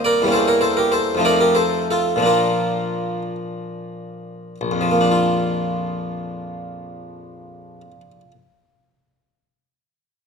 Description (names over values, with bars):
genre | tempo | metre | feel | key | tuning
classical, baroque-style suite movement for harpsichord | 46-70 BPM (dotted quarters) | 6/8 | rubato | Bb major | A4 = 440 Hz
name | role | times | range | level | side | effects
harpsichord | solo | 0.0-8.3 s | Bb1 to D5 | -18 LUFS | equal | none
room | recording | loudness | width
moderate recital hall reverb, RT60 1.7 s | none | -17 LUFS | side -5 dB against mid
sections
0.0-4.6 A section; 4.6-9.7 B section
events
slowing down 0.0-4.6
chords
0.3 Edim7; 1.2 F7; 2.2 Bb